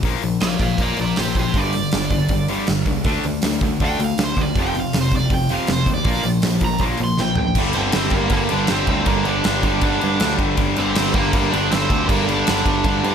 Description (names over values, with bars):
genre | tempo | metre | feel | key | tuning
punk rock | 159 BPM | 4/4 | straight | G minor | A4 = 440 Hz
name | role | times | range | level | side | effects
sludgy distorted guitar | riff | 0.0-13.1 s | F2 to D4 | -23 LUFS | left 10 dB | overdrive
picked electric bass | bass | 0.0-13.1 s | F1 to G2 | -25 LUFS | equal | none
big rock drum kit | drums | 0.0-13.1 s | crash cymbal, hi-hat, kick drum, snare drum, toms | -22 LUFS | right 1 dB | none
overdriven electric guitar | melody | 0.4-13.1 s | Bb3 to C6 | -24 LUFS | right 3 dB | digital delay
distorted electric guitar | riff | 1.6-13.1 s | F2 to D4 | -24 LUFS | right 11 dB | distortion
room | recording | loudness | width
little or no reverb | none | -16 LUFS | side -8 dB against mid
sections
0.0-7.6 A section; 7.6-13.1 B section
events
overdriven electric guitar solo 0.0-7.6; drum fill 7.2-7.6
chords
0.0 Bb; 1.5 G5; 3.0 D5; 4.6 F5; 6.1 Bb5; 7.6 Gm